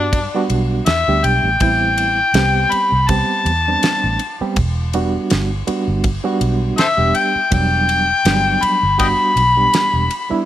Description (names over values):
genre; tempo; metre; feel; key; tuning
straight-eighth soul blues; 81 BPM; 4/4; swing 55% on 16ths; E minor; A4 = 440 Hz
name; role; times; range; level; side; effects
warm harmonica; melody; 0.0-10.4 s; D4 to B5; -15 LUFS; left 2 dB; overdrive
reed electric piano; accompaniment; 0.0-10.5 s; F#3 to G4; -21 LUFS; right 4 dB; fast tremolo
vintage muted fingered electric bass; bass; 0.0-10.3 s; E1 to G2; -20 LUFS; right 1 dB; none
damped 70s drum kit; drums; 0.1-10.3 s; kick drum, ride cymbal, snare drum; -23 LUFS; right 1 dB; none
room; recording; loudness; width
light reverb; none; -14 LUFS; side -12 dB against mid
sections
0.0-10.5 A section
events
harmonica solo 0.0-10.5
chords
0.0 Em9; 1.6 Am9; 4.6 Em9